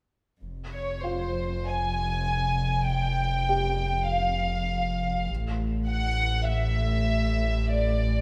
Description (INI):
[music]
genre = cinematic, suspense film score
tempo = 100 BPM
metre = 4/4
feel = straight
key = unclear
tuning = A4 = 443 Hz
[part]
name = rich studio double bass section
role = bass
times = 0.4-8.2 s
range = F1 to A1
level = -36 LUFS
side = equal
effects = none
[part]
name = warm studio cello section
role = bass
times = 0.4-8.2 s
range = F2 to A2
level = -35 LUFS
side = equal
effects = none
[part]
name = warm sub bass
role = drone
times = 0.4-8.2 s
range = F1 to A1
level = -32 LUFS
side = equal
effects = none
[part]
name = warm studio violin section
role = melody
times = 0.7-8.2 s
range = C5 to Ab5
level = -31 LUFS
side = equal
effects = none
[part]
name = felt-muted upright piano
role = texture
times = 1.0-5.3 s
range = F4 to G5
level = -38 LUFS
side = equal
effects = none
[sound]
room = wet scoring stage reverb, RT60 1.6 s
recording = none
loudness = -27 LUFS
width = mono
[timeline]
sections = 0.4-8.2 A section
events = none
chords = 0.4 Fm; 5.3 A5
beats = | 0.42 1.03 1.65 2.27 | 2.88 3.49 4.09 4.70 | 5.29 5.89 6.49 7.09 | 7.69